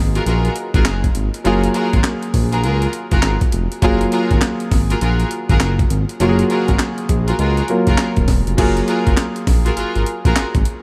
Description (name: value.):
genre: R&B, new jack swing.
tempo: 101 BPM.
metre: 4/4.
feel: swing 63% on 16ths.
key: unclear.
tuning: A4 = 440 Hz.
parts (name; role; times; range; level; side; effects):
clear grand piano; accompaniment; 0.0-10.8 s; F#3 to B4; -23 LUFS; equal; none.
smooth synth bass; bass; 0.0-10.6 s; D#1 to C#2; -21 LUFS; equal; none.
clear studio string section; stabs; 0.2-10.4 s; E#4 to A#4; -26 LUFS; equal; delay.
breakbeat sampler-style drum kit; drums; 0.2-10.8 s; crash cymbal, handclaps, hi-hat, kick drum, snare drum; -20 LUFS; equal; none.
room: light reverb.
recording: none.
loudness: -17 LUFS.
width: mono.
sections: 0.0-8.6 A section; 8.6-10.8 B section.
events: none.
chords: 0.0 F#maj9.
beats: 0.26 0.86 | 1.45 2.04 2.64 3.23 | 3.83 4.42 5.01 5.61 | 6.20 6.80 7.39 7.99 | 8.58 9.17 9.77 10.36.